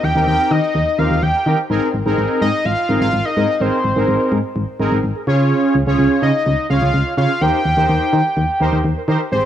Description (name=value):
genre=synth-pop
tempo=126 BPM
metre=4/4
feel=straight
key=Ab major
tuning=A4 = 439 Hz
part: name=fat analog lead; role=melody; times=0.0-9.5 s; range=C5 to G5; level=-19 LUFS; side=equal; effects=chorus, tape echo
part: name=solid FM bass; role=bass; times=0.0-9.4 s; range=Ab1 to Eb3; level=-18 LUFS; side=equal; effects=none
part: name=analog synth brass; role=accompaniment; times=0.2-9.5 s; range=C4 to Db5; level=-20 LUFS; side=right 1 dB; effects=chorus
room=light reverb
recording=none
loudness=-14 LUFS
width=side -10 dB against mid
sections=0.0-9.3 A section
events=none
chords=0.0 Eb6; 1.7 Abadd9; 5.3 Db; 7.4 Eb6